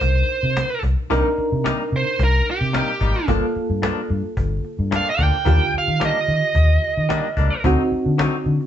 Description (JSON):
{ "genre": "straight-eighth soul blues", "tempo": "110 BPM", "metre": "4/4", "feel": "straight", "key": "G minor", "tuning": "A4 = 440 Hz", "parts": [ { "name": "smooth overdriven lead guitar", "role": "melody", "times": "0.0-7.6 s", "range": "G4 to G5", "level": "-21 LUFS", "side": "right 3 dB", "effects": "none" }, { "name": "reed electric piano", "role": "accompaniment", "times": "0.0-8.7 s", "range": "D3 to Bb4", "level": "-25 LUFS", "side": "right 2 dB", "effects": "overdrive, medium tremolo" }, { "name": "vintage muted fingered electric bass", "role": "bass", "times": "0.0-8.6 s", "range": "G1 to Eb3", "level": "-20 LUFS", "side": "equal", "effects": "none" }, { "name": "cajon", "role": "drums", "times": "0.0-8.7 s", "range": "none", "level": "-28 LUFS", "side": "left 1 dB", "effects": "none" }, { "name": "direct-recorded clean electric guitar", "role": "stabs", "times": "1.1-8.4 s", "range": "G2 to Eb4", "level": "-25 LUFS", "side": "left 5 dB", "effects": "none" } ], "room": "moderate studio reverb, RT60 0.7 s", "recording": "band playing live in one room, nothing above 7.9 kHz", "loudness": "-17 LUFS", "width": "side -10 dB against mid", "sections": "0.0-8.7 A section", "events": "none", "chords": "0.0 Cm7; 3.3 Gm7; 5.5 Ebmaj7; 7.6 D7b9", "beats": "0.01 0.56 | 1.10 1.65 2.19 2.74 | 3.29 3.83 4.38 4.92 | 5.47 6.01 6.56 7.10 | 7.65 8.19" }